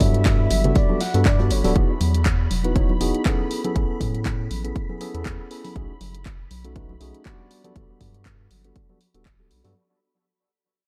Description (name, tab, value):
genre	deep house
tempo	120 BPM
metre	4/4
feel	swing 55% on 16ths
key	unclear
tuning	A4 = 438 Hz
part	breathy flute-like synth lead	melody	0.0-1.8 s	C#5 to F#5	-32 LUFS	equal	lush chorus, cassette tape, dub echo
part	tine electric piano	stabs	0.0-9.7 s	G3 to D5	-30 LUFS	equal	overdrive, sidechain pumping, dub echo
part	round analog bass	bass	0.0-9.7 s	D1 to A2	-26 LUFS	equal	sidechain pumping
part	electronic kick drum	drums	0.0-9.4 s	none	-24 LUFS	equal	none
part	house drum kit	drums	0.0-9.7 s	handclaps, hi-hat	-34 LUFS	equal	none
part	vintage drum kit	drums	0.0-1.6 s	hi-hat, snare drum	-42 LUFS	equal	none
part	congas and bongos	percussion	0.0-9.7 s	none	-33 LUFS	equal	dub echo
part	soft string machine	texture	0.0-9.8 s	B5	-43 LUFS	equal	phaser, ensemble chorus, sidechain pumping
room	little or no reverb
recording	echo-heavy mix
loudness	-21 LUFS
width	mono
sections	0.0-9.8 A section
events	fade-out 0.0-9.8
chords	0.0 Gmaj7; 1.8 Emaj7; 3.5 Amaj9; 5.8 B13; 7.5 Gmaj7